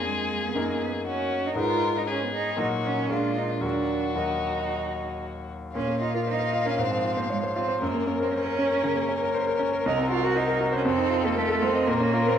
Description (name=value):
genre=quick classical-period movement for piano trio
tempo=118 BPM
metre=4/4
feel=straight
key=Eb minor, Bb minor from 5.8 s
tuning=A4 = 439 Hz
part: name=warm violin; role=melody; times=0.0-12.4 s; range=F4 to F5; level=-31 LUFS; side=left 7 dB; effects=none
part: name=rich cello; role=second line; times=0.0-12.4 s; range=Ab3 to Gb4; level=-28 LUFS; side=right 5 dB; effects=none
part: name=bright concert grand piano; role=accompaniment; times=0.0-12.4 s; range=C2 to Eb5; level=-27 LUFS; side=left 1 dB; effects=none
room=wet recital hall reverb, RT60 1.7 s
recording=none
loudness=-23 LUFS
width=side -8 dB against mid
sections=0.0-5.8 A section; 5.8-12.4 B section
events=none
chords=0.0 Bb5/F; 0.6 Ebm/Gb; 1.6 Abm; 2.6 Ebm/Bb; 3.1 Bb7; 3.6 Ebm; 5.8 Bb5; 6.8 Fm/Ab; 7.8 Gb; 9.9 Cm7b5; 10.9 F7; 11.9 Bbm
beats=0.07 0.57 1.07 | 1.58 2.08 2.59 3.11 | 3.63 4.17 4.70 5.23 | 5.75 6.27 6.79 7.30 | 7.81 8.33 8.84 9.35 | 9.86 10.36 10.86 11.37 | 11.88 12.38